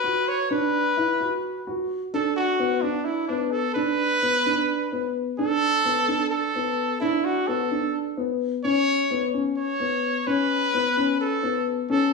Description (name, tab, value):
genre	progressive instrumental, progressive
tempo	258 BPM (eighths)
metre	7/8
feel	straight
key	B minor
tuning	A4 = 440 Hz
part	clear trumpet	melody	0.0-12.1 s	D4 to C#5	-24 LUFS	equal	none
part	dark grand piano	arpeggios	0.0-12.1 s	B3 to F#4	-25 LUFS	left 2 dB	none
room	wet large studio reverb, RT60 1.1 s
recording	band playing live in one room, studio reverb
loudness	-22 LUFS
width	side -3 dB against mid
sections	0.0-2.1 A section; 2.1-12.1 B section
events	none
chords	0.0 Bm; 2.1 Bm7; 8.6 N.C.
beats	0.04 0.27 | 0.50 0.74 0.97 1.20 1.44 1.67 1.90 | 2.13 2.37 2.60 2.83 3.06 3.29 3.53 | 3.76 3.99 4.22 4.46 4.69 4.92 5.15 | 5.39 5.62 5.85 6.08 6.32 6.55 6.78 | 7.01 7.25 7.48 7.71 7.94 8.18 8.41 | 8.64 8.87 9.11 9.34 9.57 9.80 10.04 | 10.27 10.50 10.73 10.97 11.20 11.43 11.67 | 11.90 12.13